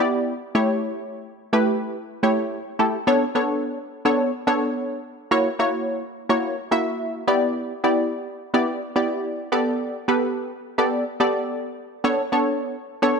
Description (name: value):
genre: pop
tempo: 107 BPM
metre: 4/4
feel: straight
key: B minor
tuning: A4 = 439 Hz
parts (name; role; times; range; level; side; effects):
- punchy chord stab; solo; 0.0-13.2 s; A3 to E5; -21 LUFS; equal; chorus
room: moderate lush hall reverb, RT60 2.3 s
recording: none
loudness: -21 LUFS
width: side -5 dB against mid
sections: 0.0-3.1 A section; 3.1-13.2 B section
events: none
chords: 0.0 Em7; 0.6 A7; 3.1 Bm9; 5.3 F#7; 7.3 Em7; 9.5 A9sus4; 12.0 Bm9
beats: 0.27 | 0.83 1.39 1.95 2.51 | 3.07 3.63 4.19 4.75 | 5.32 5.88 6.44 7.00 | 7.56 8.12 8.68 9.24 | 9.80 10.36 10.92 11.48 | 12.04 12.61 13.17